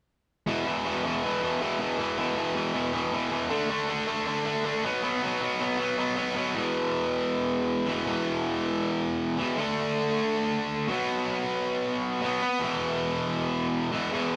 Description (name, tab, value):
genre	punk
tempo	158 BPM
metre	4/4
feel	straight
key	unclear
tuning	A4 = 442 Hz
part	distorted electric guitar	solo	0.5-14.4 s	E2 to D4	-28 LUFS	equal	overdrive
room	wet small room reverb, RT60 0.5 s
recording	rough rehearsal-room recording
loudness	-28 LUFS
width	mono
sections	0.5-6.6 A section; 6.6-14.4 B section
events	none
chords	0.5 E5; 3.5 D5; 4.8 B5; 6.6 E5; 9.6 D5; 10.9 B5; 12.6 E5